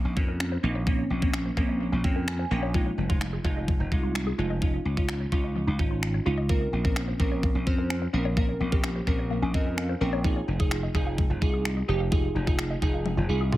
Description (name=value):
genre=dance-pop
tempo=128 BPM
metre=4/4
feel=straight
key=Bb dorian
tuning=A4 = 442 Hz
part: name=slap bass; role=bass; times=0.0-13.6 s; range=F1 to F2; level=-28 LUFS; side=equal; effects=sidechain pumping
part: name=hollow square pluck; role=arpeggios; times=0.1-13.6 s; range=F3 to F5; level=-37 LUFS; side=left 2 dB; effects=chorus, phaser, sidechain pumping, analog delay
part: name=glassy digital keys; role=accompaniment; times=0.2-13.5 s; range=Ab3 to Ab5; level=-31 LUFS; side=right 2 dB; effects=chorus, sidechain pumping, analog delay
part: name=crisp 8-bit digital drum machine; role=drums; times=0.2-13.6 s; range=finger snaps, kick drum, toms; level=-27 LUFS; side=equal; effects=overdrive
room=light reverb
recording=echo-heavy mix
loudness=-24 LUFS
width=side -15 dB against mid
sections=0.0-13.6 A section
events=synth keys fill 1.8-2.7, 9.3-10.2; drum fill 13.1-13.6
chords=0.0 Bbmadd9; 2.7 Fm7; 4.6 Dbadd9; 6.5 Bbmadd9; 10.2 Fm7